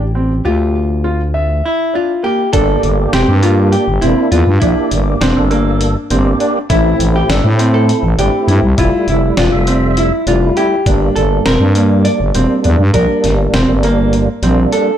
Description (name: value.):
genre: progressive instrumental, band music in an uneven meter.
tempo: 202 BPM (eighths).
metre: 7/8.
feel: straight.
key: G dorian.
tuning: A4 = 440 Hz.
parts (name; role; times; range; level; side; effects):
vintage hollow-body jazz guitar; melody; 0.0-15.0 s; D4 to D5; -17 LUFS; equal; tape echo.
growling FM bass; bass; 0.0-14.7 s; E1 to A2; -14 LUFS; equal; none.
clear concert grand piano; arpeggios; 0.2-14.9 s; Bb3 to E5; -18 LUFS; equal; tape echo.
tonewheel organ; accompaniment; 2.5-14.9 s; G3 to E5; -19 LUFS; right 3 dB; overdrive, chorus vibrato, slow rotary speaker.
dusty soul sampler-style drum kit; drums; 2.5-14.9 s; hi-hat, kick drum, snare drum; -20 LUFS; equal; none.
room: light reverb.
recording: blown-out, overdriven recording, overdrive.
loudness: -10 LUFS.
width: side -10 dB against mid.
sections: 0.0-2.5 A section; 2.5-15.0 B section.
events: none.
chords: 0.5 Dmadd9; 2.5 Gm; 6.7 Am; 8.8 Fmaj7; 10.9 Gm.